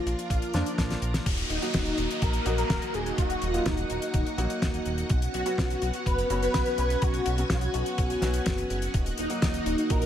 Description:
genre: italo disco.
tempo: 125 BPM.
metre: 4/4.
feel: straight.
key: Eb minor.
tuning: A4 = 440 Hz.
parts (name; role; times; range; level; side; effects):
wide unison lead; melody; 0.0-10.1 s; D4 to B4; -31 LUFS; left 1 dB; ensemble chorus, vintage 12-bit sampler grit, ping-pong delay.
string machine, full ensemble; sustained chords; 0.0-10.1 s; Bb3 to Bb5; -34 LUFS; equal; ensemble chorus.
dark baby grand piano; stabs; 0.0-10.1 s; F3 to Gb4; -34 LUFS; equal; none.
chorused synth bass; bass; 0.1-10.1 s; Eb1 to F2; -30 LUFS; equal; none.
damped 70s drum kit; drums; 0.1-10.1 s; crash cymbal, hi-hat, snare drum; -32 LUFS; left 2 dB; studio reverb.
electronic kick drum; drums; 0.3-10.0 s; none; -28 LUFS; equal; studio reverb.
downlifter; sound effects; 1.3-5.1 s; none; -37 LUFS; equal; none.
room: light reverb, small room ambience.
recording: none.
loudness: -25 LUFS.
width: side -10 dB against mid.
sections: 0.0-1.3 A section; 1.3-10.1 B section.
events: drum fill 0.9-1.3.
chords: 0.0 Bb; 1.3 Ebm; 5.1 Bsus2; 8.9 Ebm.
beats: 0.30 0.78 | 1.26 1.74 2.22 2.70 | 3.18 3.66 4.14 4.62 | 5.10 5.58 6.06 6.54 | 7.02 7.50 7.98 8.46 | 8.94 9.42 9.90.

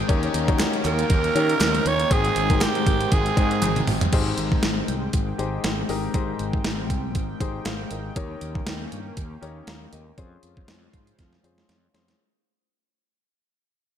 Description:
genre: 1980s-style pop.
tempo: 119 BPM.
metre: 4/4.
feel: swing 55% on 16ths.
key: Ab major.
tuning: A4 = 440 Hz.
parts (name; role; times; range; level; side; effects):
distorted electric guitar; accompaniment; 0.0-4.6 s; Ab2 to Eb4; -33 LUFS; right 1 dB; overdrive, ensemble chorus.
warm grand piano; accompaniment; 0.0-12.2 s; Ab2 to Bb5; -30 LUFS; left 6 dB; none.
chorused pulse-width pad; sustained chords; 0.0-12.2 s; Db3 to G5; -32 LUFS; left 1 dB; none.
fretless electric bass; bass; 0.0-12.1 s; Ab1 to Eb3; -28 LUFS; equal; none.
clean 12-bit digital drum machine; drums; 0.1-12.2 s; crash cymbal, hi-hat, kick drum, snare drum, tambourine, toms; -24 LUFS; equal; gated reverb.
group handclap; percussion; 0.6-3.8 s; none; -36 LUFS; right 4 dB; none.
raspy alto saxophone; melody; 0.9-3.9 s; G4 to Db5; -25 LUFS; right 5 dB; none.
room: light reverb.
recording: none.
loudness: -20 LUFS.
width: side -9 dB against mid.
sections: 0.0-4.1 A section; 4.1-12.2 B section.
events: drum fill 3.6-4.1, 11.2-12.2; fade-out 4.1-12.2.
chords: 0.1 Eb7; 2.1 Abmaj7; 8.2 Eb7; 10.2 Dbmaj7.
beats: | 0.09 0.60 1.10 1.61 | 2.11 2.61 3.12 3.62 | 4.13 4.63 5.13 5.64 | 6.14 6.65 7.15 7.66 | 8.16 8.66 9.17 9.67 | 10.18 10.68 11.19 11.69.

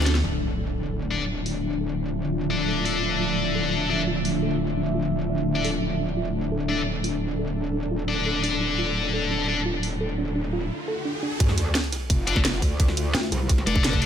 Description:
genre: dark technical drum and bass.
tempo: 172 BPM.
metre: 4/4.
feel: straight.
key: D minor.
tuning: A4 = 440 Hz.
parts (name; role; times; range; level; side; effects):
swarming drone; sustained chords; 0.0-14.1 s; D3 to A4; -31 LUFS; equal; built-in reverb, sidechain pumping.
tight distorted guitar; stabs; 0.0-9.6, 12.3-14.1 s; D4 to D5; -28 LUFS; left 4 dB; distortion, dub echo.
pulsing pluck wobble bass; bass; 0.0-0.2, 13.1-14.1 s; F1 to D2; -23 LUFS; equal; chorus, tube saturation.
breakbeat sampler-style drum kit; drums; 0.0-0.2, 11.4-14.1 s; ride cymbal, snare drum; -35 LUFS; right 2 dB; high-pass filter on cymbals, high-pass filter on snare.
warbly tape-like pad; texture; 0.0-10.7 s; F3 to E5; -31 LUFS; equal; chorus, built-in reverb, phaser, sidechain pumping.
soft round pluck; arpeggios; 0.1-11.3 s; D4 to D5; -34 LUFS; right 2 dB; chorus, vintage 12-bit sampler grit, sidechain pumping, dub echo.
drum and bass drum kit; drums; 0.1-14.1 s; hi-hat, snare drum; -28 LUFS; equal; none.
metallic wobble bass; bass; 0.2-13.7 s; D1 to D2; -28 LUFS; equal; distortion, chorus, overdrive, sidechain pumping.
impact, riser and sub drop; sound effects; 0.2-1.6, 9.9-12.8 s; none; -32 LUFS; equal; none.
electronic kick drum; drums; 11.4-14.0 s; none; -22 LUFS; equal; none.
room: light reverb.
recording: none.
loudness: -22 LUFS.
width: side -8 dB against mid.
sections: 0.2-11.4 A section; 11.4-14.1 B section.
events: break 0.0; drum fill 0.0; band accent 0.2; impact 0.2-1.6, 11.4-12.8; filter sweep on synth drone 0.2-11.4; filter sweep on synth pluck 0.2-11.4; riser 9.9-11.4; drop 11.4-14.1.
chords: 0.2 Dmadd9.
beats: | 0.24 0.59 0.94 1.28 | 1.63 1.98 2.33 2.68 | 3.03 3.38 3.73 4.08 | 4.42 4.77 5.12 5.47 | 5.82 6.17 6.52 6.87 | 7.21 7.56 7.91 8.26 | 8.61 8.96 9.31 9.66 | 10.01 10.36 10.70 11.05 | 11.40 11.75 12.10 12.45 | 12.80 13.15 13.49 13.84.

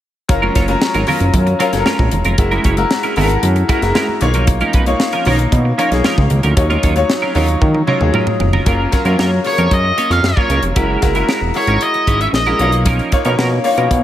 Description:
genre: polished 1980s jazz-funk pop.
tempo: 114 BPM.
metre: 4/4.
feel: straight.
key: F# major.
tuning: A4 = 441 Hz.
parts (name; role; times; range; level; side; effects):
bright grand piano; accompaniment; 0.3-14.0 s; F#3 to C#5; -18 LUFS; left 2 dB; lush chorus.
clean electric guitar; riff; 0.3-13.9 s; E#3 to C#5; -21 LUFS; right 4 dB; analog chorus.
fat analog bass; bass; 0.3-14.0 s; E1 to D#3; -16 LUFS; equal; none.
tight funk drum kit; drums; 0.3-14.0 s; hi-hat, kick drum, snare drum, toms; -18 LUFS; equal; none.
congas; percussion; 0.4-8.5 s; none; -26 LUFS; right 2 dB; none.
octave-fuzz lead guitar; melody; 9.5-12.7 s; C#5 to E#5; -17 LUFS; equal; distortion.
room: light reverb, small room ambience.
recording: none.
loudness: -12 LUFS.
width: side -12 dB against mid.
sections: 0.3-8.7 A section; 8.7-14.0 B section.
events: drum fill 7.6-8.7.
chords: 0.3 F#maj7; 2.4 F#9; 4.2 Bmaj9#11; 6.6 D#m9; 8.7 F#maj7; 10.8 F#9; 12.6 Bmaj9#11.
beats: | 0.29 0.81 1.34 1.86 | 2.38 2.91 3.43 3.95 | 4.47 5.00 5.52 6.05 | 6.57 7.09 7.62 8.14 | 8.66 9.19 9.71 10.24 | 10.76 11.29 11.81 12.34 | 12.86 13.38 13.91.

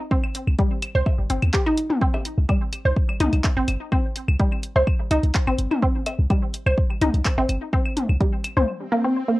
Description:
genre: minimal techno.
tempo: 126 BPM.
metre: 4/4.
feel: straight.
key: C minor.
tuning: A4 = 442 Hz.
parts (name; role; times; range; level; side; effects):
resonant blip pluck; riff; 0.1-9.3 s; G3 to C5; -24 LUFS; equal; chorus, sidechain pumping, cassette tape, analog delay.
electronic kick drum; drums; 0.1-8.3 s; none; -22 LUFS; equal; overdrive, cassette tape.
electronic claves, cowbell and toms; percussion; 0.2-8.7 s; none; -27 LUFS; left 2 dB; cassette tape, analog delay.
punchy analog drum machine; drums; 0.3-8.5 s; handclaps, hi-hat; -29 LUFS; equal; overdrive, cassette tape.
punchy sub bass; bass; 0.5-8.6 s; G1 to Eb2; -20 LUFS; equal; sidechain pumping.
swell; sound effects; 8.8-9.4 s; none; -33 LUFS; left 3 dB; none.
room: light reverb.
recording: home recording on cassette.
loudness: -19 LUFS.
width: side -18 dB against mid.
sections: 0.0-9.4 A section.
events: swell 8.8-9.4.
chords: 0.0 C5.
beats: | 0.11 0.59 1.06 1.54 | 2.02 2.49 2.97 3.44 | 3.92 4.40 4.87 5.35 | 5.82 6.30 6.78 7.25 | 7.73 8.21 8.68 9.16.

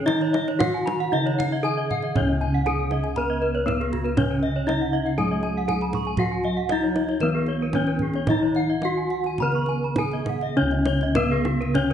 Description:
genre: Balinese gamelan.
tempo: 101-119 BPM.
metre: 4/4.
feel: straight.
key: Db slendro.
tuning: A4 = 440 Hz.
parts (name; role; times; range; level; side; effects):
gamelan-type bronze metallophone; melody; 0.0-11.9 s; Cb4-45c to Cb5-45c; -25 LUFS; left 1 dB; none.
gamelan-type bronze metallophone; accompaniment; 0.0-11.9 s; Db3 to Cb4-45c; -30 LUFS; right 2 dB; none.
gamelan-type bronze metallophone; arpeggios; 0.0-11.9 s; Gb4-35c to Db6; -31 LUFS; right 5 dB; none.
gamelan-type bossed gongs; bass; 0.0-11.9 s; Db2 to Gb4-35c; -27 LUFS; equal; none.
gamelan-type bronze metallophone; arpeggios; 0.1-11.9 s; Gb4-35c to Cb6-45c; -29 LUFS; left 4 dB; none.
kendang; percussion; 0.1-11.9 s; none; -30 LUFS; right 3 dB; none.
room: moderate recital hall reverb, RT60 1.5 s.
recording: nothing above 10.4 kHz.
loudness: -21 LUFS.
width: side -9 dB against mid.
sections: 0.0-2.2 A section; 2.2-10.6 B section; 10.6-11.9 A section.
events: none.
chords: none.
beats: | 0.07 0.61 1.14 1.66 | 2.17 2.67 3.17 3.68 | 4.18 4.68 5.19 5.69 | 6.19 6.70 7.22 7.75 | 8.29 8.84 9.40 9.98 | 10.56 11.16 11.75.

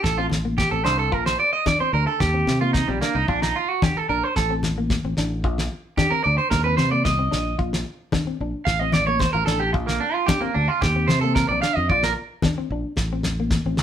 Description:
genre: highlife guitar band.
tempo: 111 BPM.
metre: 4/4.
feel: straight.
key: Bb major.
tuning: A4 = 440 Hz.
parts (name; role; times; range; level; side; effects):
electric guitar at the edge of break-up; arpeggios; 0.0-12.1 s; G3 to F5; -22 LUFS; right 4 dB; none.
fingered electric bass; bass; 0.0-13.8 s; A1 to C3; -24 LUFS; equal; none.
damped 70s drum kit; drums; 0.0-13.8 s; kick drum, snare drum; -25 LUFS; equal; none.
congas; percussion; 0.0-13.8 s; none; -27 LUFS; left 3 dB; none.
semi-hollow electric guitar; accompaniment; 0.2-13.8 s; Bb3 to F4; -30 LUFS; left 4 dB; none.
room: moderate studio reverb, RT60 0.8 s.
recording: band playing live in one room.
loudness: -19 LUFS.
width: side -9 dB against mid.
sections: 0.0-13.8 A section.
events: clean electric guitar solo 0.0-13.8.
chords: 0.0 Amadd11; 1.1 Bb; 2.2 Eb5; 3.3 Bb; 4.4 Amadd11; 5.4 Bb; 6.5 Eb5; 7.6 Bb; 8.7 F/A; 9.8 Bb; 10.8 Ebsus2; 11.9 Bb; 13.0 Am.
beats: 0.04 0.58 | 1.12 1.66 2.20 2.74 | 3.28 3.82 4.36 4.90 | 5.44 5.98 6.52 7.06 | 7.60 8.14 8.67 9.21 | 9.75 10.29 10.83 11.36 | 11.90 12.44 12.98 13.52.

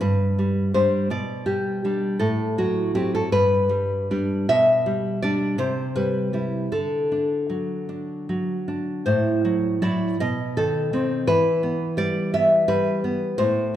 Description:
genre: romantic piece for solo classical guitar.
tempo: 49-57 BPM (dotted quarters).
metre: 6/8.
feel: rubato.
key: G major, E minor from 9.1 s.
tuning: A4 = 440 Hz.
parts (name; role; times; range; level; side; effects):
nylon-string guitar; solo; 0.0-13.8 s; G2 to E5; -20 LUFS; equal; none.
room: wet recital hall reverb, RT60 1.6 s.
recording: recorded in a church or concert hall.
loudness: -20 LUFS.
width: side -11 dB against mid.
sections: 0.0-13.8 A section.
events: none.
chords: 0.0 G; 1.1 G/B; 2.2 F#dim/A; 3.3 G; 4.5 G/B; 5.6 C; 6.7 D; 9.1 F#m7b5/A; 10.2 B7b9; 11.3 Em.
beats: 1.10 | 2.19 3.31 | 4.49 5.59 | 6.72 7.90 | 9.07 10.20 | 11.29 12.34 | 13.40.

